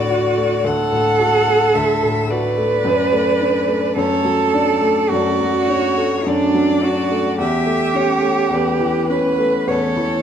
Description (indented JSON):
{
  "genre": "classical, slow romantic movement for piano trio",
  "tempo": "53 BPM",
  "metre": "4/4",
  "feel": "rubato",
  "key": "D major",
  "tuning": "A4 = 440 Hz",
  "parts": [
    { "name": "rich violin", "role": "melody", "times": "0.0-10.2 s", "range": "A4 to F#5", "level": "-23 LUFS", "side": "left 8 dB", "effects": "none" },
    { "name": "rich cello", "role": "second line", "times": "0.0-10.2 s", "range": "D4 to C#5", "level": "-18 LUFS", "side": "right 5 dB", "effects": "none" },
    { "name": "clear baby grand piano", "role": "accompaniment", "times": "0.0-10.2 s", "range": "D2 to F#4", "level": "-19 LUFS", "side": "left 2 dB", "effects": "none" }
  ],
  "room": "wet recital hall reverb, RT60 1.5 s",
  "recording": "none",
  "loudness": "-15 LUFS",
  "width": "side -8 dB against mid",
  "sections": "0.0-10.2 A section",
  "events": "none",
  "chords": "0.0 D; 2.9 D/F#; 7.4 A7/E"
}